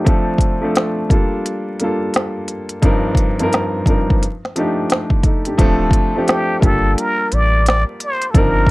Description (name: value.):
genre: lo-fi hip hop.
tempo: 87 BPM.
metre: 4/4.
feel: swing 62% on 16ths.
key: unclear.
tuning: A4 = 439 Hz.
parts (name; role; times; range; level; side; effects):
warm upright piano; accompaniment; 0.0-8.7 s; G2 to C5; -18 LUFS; equal; cassette tape, low-pass filter.
organic electronic drum kit; drums; 0.1-8.7 s; hi-hat, kick drum, snare drum; -15 LUFS; equal; none.
warm sub bass; bass; 5.6-8.7 s; D1 to A1; -18 LUFS; equal; none.
trumpet with plunger mute; melody; 6.3-8.7 s; G4 to D5; -18 LUFS; equal; none.
room: light reverb.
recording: vinyl crackle.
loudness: -14 LUFS.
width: side -20 dB against mid.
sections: 0.0-5.6 A section; 5.6-8.7 B section.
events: none.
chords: 0.1 Dm7; 1.1 Gm9; 2.8 Cm11/G; 4.2 F13; 5.6 Dm7; 6.6 Gm9.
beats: | 0.07 0.76 1.45 2.14 | 2.83 3.52 4.21 4.89 | 5.58 6.27 6.96 7.65 | 8.34.